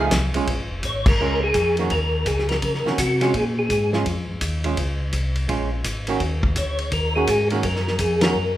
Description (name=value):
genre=soul jazz organ trio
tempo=168 BPM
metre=4/4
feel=swing 63% on 8ths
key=Bb minor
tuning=A4 = 441 Hz
part: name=percussive tonewheel organ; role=melody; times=0.0-3.9, 6.6-8.6 s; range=Gb4 to Db5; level=-22 LUFS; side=left 1 dB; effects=slow rotary speaker, chorus vibrato
part: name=archtop guitar, miked and amplified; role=accompaniment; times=0.0-8.3 s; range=Eb3 to G#4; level=-26 LUFS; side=right 4 dB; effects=none
part: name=mellow tonewheel organ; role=bass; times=0.0-8.6 s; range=F1 to Db3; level=-24 LUFS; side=equal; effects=slow rotary speaker
part: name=warm soul drum kit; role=drums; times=0.1-8.3 s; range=crash cymbal, hi-hat, kick drum, ride cymbal, snare drum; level=-25 LUFS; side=equal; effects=none
room=moderate recital hall reverb, RT60 1.5 s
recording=recorded in a church or concert hall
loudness=-19 LUFS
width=side -13 dB against mid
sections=0.5-8.6 A section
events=band accent 1.0, 8.2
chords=0.5 Bbm7; 1.9 Ebm7; 3.3 Bbm7; 6.2 Ebm7